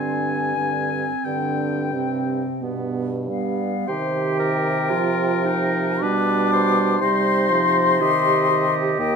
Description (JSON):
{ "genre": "classical, slow romantic movement for wind quintet", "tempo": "44-62 BPM", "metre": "3/4", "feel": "rubato", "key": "C minor", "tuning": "A4 = 441 Hz", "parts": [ { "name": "mellow hollow silver concert flute", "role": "melody", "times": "0.0-9.2 s", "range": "F5 to D6", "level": "-24 LUFS", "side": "left 8 dB", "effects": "none" }, { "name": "warm oboe", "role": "second line", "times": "0.0-9.2 s", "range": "Bb4 to Ab5", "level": "-26 LUFS", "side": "left 5 dB", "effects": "none" }, { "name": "warm French horn", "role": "accompaniment", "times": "0.0-9.2 s", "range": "B2 to Bb3", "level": "-26 LUFS", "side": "equal", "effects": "none" }, { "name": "warm clarinet", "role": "accompaniment", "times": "0.0-9.2 s", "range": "B3 to G4", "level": "-26 LUFS", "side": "right 9 dB", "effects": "none" }, { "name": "mellow bassoon", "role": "bass", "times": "0.0-9.2 s", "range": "Eb2 to C3", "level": "-26 LUFS", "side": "right 4 dB", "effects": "none" } ], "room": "moderate recital hall reverb, RT60 1.4 s", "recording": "none", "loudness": "-18 LUFS", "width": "side -6 dB against mid", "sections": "0.0-3.9 A section; 3.9-9.2 B section", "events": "none", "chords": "0.0 Gsus4; 2.6 G; 3.9 Cm; 6.0 G/B; 7.0 Cm" }